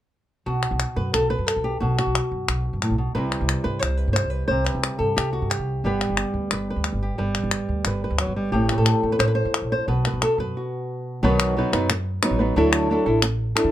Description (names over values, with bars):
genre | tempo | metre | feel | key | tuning
flamenco | 178 BPM | 4/4 | straight | unclear | A4 = 445 Hz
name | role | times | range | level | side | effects
flamenco guitar | melody | 0.5-13.7 s | A2 to C5 | -23 LUFS | equal | plate reverb
upright bass | bass | 0.5-13.7 s | G1 to D3 | -25 LUFS | equal | none
palmas hand claps | percussion | 0.6-13.7 s | none | -24 LUFS | left 4 dB | none
room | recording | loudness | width
light reverb | none | -20 LUFS | side -12 dB against mid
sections
0.5-11.2 A section; 11.2-13.7 B section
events
break 10.6-11.2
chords
0.5 B5; 3.1 C; 5.8 G; 8.5 Am; 9.9 B5; 11.2 B; 12.6 Dadd9